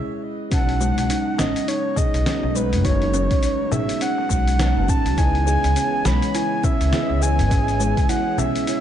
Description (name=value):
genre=organic downtempo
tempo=103 BPM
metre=4/4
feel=swing 59% on 16ths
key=unclear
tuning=A4 = 440 Hz
part: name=breathy flute-like synth lead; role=melody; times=0.5-8.8 s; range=B4 to B5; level=-25 LUFS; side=equal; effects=chorus, digital delay
part: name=tine electric piano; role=accompaniment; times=0.5-8.8 s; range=E3 to A5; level=-30 LUFS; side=left 2 dB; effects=ensemble chorus, sidechain pumping, ping-pong delay
part: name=warbly tape-like pad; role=sustained chords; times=0.5-8.8 s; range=C#3 to C#5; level=-31 LUFS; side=right 2 dB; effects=chorus, built-in reverb, sidechain pumping
part: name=kalimba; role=arpeggios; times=0.5-8.8 s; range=G#3 to G#4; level=-25 LUFS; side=right 1 dB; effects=ping-pong delay
part: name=upright bass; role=bass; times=0.5-8.5 s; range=F#1 to C#2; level=-22 LUFS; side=equal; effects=tube saturation, sidechain pumping
part: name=dusty soul sampler-style drum kit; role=drums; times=0.5-8.8 s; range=hi-hat, shaker, snare drum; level=-28 LUFS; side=left 1 dB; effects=none
part: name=electronic kick drum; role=drums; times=0.5-8.1 s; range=none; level=-22 LUFS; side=equal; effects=none
part: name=darbuka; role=percussion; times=0.8-8.5 s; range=none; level=-30 LUFS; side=left 3 dB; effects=none
room=light reverb, digital ambience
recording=dark, warm production, nothing above 10.4 kHz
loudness=-18 LUFS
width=side -10 dB against mid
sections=0.5-8.8 A section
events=stop 0.0-0.5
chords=0.0 N.C.; 0.5 B9; 5.2 C#m9